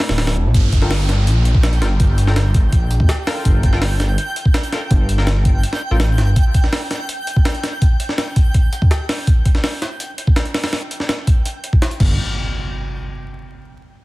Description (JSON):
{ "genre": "drum and bass, jungle", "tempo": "165 BPM", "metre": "4/4", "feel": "straight", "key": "G dorian", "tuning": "A4 = 438 Hz", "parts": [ { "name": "warbly tape-like pad", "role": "sustained chords", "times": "0.0-0.5 s", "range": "F3 to E4", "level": "-31 LUFS", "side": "equal", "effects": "chorus, built-in reverb" }, { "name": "breakbeat sampler-style drum kit", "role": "drums", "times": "0.0-12.1 s", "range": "crash cymbal, hi-hat, kick drum, snare drum", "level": "-16 LUFS", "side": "equal", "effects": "studio ambience" }, { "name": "detuned saw bass", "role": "bass", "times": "0.1-6.3, 12.0-12.2 s", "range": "D1 to C2", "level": "-16 LUFS", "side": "equal", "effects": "tube saturation" }, { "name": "downlifter and impact", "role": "sound effects", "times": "0.5-3.5, 12.0-13.5 s", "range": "none", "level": "-28 LUFS", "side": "right 1 dB", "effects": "none" }, { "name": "twinkling granular texture", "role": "texture", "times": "1.2-12.2 s", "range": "G5", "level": "-30 LUFS", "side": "right 1 dB", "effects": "built-in reverb" }, { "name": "band-passed chord stab", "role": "stabs", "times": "0.8-6.0 s", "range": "F4 to G5", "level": "-29 LUFS", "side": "left 2 dB", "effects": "chorus, dub echo" } ], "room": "little or no reverb", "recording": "dense, heavily limited modern master, vinyl crackle", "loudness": "-14 LUFS", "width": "side -20 dB against mid", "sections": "0.5-12.2 A section; 12.2-13.6 B section", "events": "none", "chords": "0.0 Dm9; 0.5 Gm9; 6.4 N.C." }